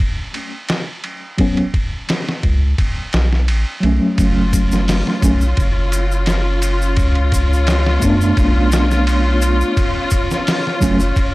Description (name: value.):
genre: trip hop.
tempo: 86 BPM.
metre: 4/4.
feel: straight.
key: F# harmonic minor.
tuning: A4 = 440 Hz.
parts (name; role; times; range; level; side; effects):
trip hop sampler-style drum kit; drums; 0.0-11.3 s; hi-hat, kick drum, ride cymbal, snare drum; -19 LUFS; equal; none.
mellow tine electric piano; accompaniment; 1.4-11.0 s; F#3 to D4; -19 LUFS; right 1 dB; slow stereo tremolo, vintage 12-bit sampler grit, tape echo.
round analog bass; bass; 2.4-11.1 s; F#1 to F#2; -16 LUFS; equal; transformer saturation.
clear studio string section; sustained chords; 4.2-11.3 s; E#4; -22 LUFS; left 1 dB; none.
tube shaker; percussion; 4.2-11.3 s; none; -30 LUFS; left 1 dB; none.
wind-like tuned noise texture; texture; 4.6-11.3 s; C#4 to C#5; -26 LUFS; left 2 dB; built-in reverb.
room: digital ambience.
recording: dry, gritty hardware recording.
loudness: -14 LUFS.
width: side -19 dB against mid.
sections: 0.0-11.3 A section.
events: none.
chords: 0.0 N.C.; 1.4 C#7sus4; 2.8 B5; 4.2 F#m; 7.0 C#7sus4; 8.4 Bm7; 9.8 F#5.